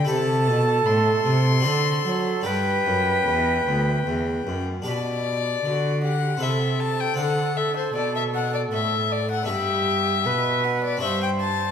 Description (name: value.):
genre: classical, baroque-style sonata movement with continuo.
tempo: 78 BPM.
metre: 3/4.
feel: rubato.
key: G major.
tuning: A4 = 440 Hz.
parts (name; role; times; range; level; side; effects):
warm violin; melody; 0.0-11.7 s; C5 to C6; -26 LUFS; left 8 dB; none.
harpsichord; accompaniment; 0.0-11.7 s; D2 to C5; -30 LUFS; left 2 dB; none.
dark cello; bass; 0.0-11.7 s; D2 to F#3; -25 LUFS; right 1 dB; none.
silver concert flute; second line; 0.1-11.7 s; F#4 to C5; -25 LUFS; right 4 dB; none.
room: wet recital hall reverb, RT60 1.5 s.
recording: none.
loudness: -20 LUFS.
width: side -8 dB against mid.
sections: 0.0-4.9 A section; 4.9-11.7 A section.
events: none.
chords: 0.1 Am7; 1.7 D7; 2.5 G; 4.9 G/B; 6.4 Am/C; 7.2 D5; 9.5 G; 11.0 D7/G.